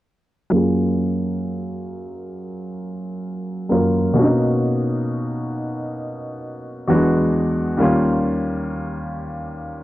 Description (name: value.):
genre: R&B.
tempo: 66 BPM.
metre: 4/4.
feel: straight.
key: F# major.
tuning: A4 = 438 Hz.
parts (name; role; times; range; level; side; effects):
warm baby grand piano; accompaniment; 0.5-9.8 s; D#2 to A#4; -19 LUFS; equal; low-pass filter.
room: little or no reverb.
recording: dry, gritty hardware recording, cassette tape.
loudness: -18 LUFS.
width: side -16 dB against mid.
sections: 0.5-9.8 A section.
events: filter sweep on grand piano 0.5-9.8.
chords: 0.5 F#maj9; 4.2 Bmaj7; 6.9 E9; 7.8 D#7.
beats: | 0.52 1.43 2.34 3.25 | 4.16 5.07 5.98 6.89 | 7.80 8.71 9.62.